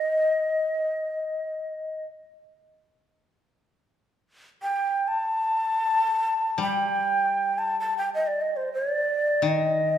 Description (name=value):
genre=japanese traditional, Japanese chamber music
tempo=free time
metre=none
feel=none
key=unclear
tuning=A4 = 444 Hz
part: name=breathy mellow shakuhachi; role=melody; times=0.0-10.0 s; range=C5 to A5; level=-23 LUFS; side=equal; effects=none
part: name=koto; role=accompaniment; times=6.6-10.0 s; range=Eb3 to G3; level=-29 LUFS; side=left 4 dB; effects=none
room=wet recital hall reverb, RT60 1.6 s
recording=recorded in a church or concert hall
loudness=-23 LUFS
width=side -10 dB against mid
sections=0.0-10.0 A section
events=none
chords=none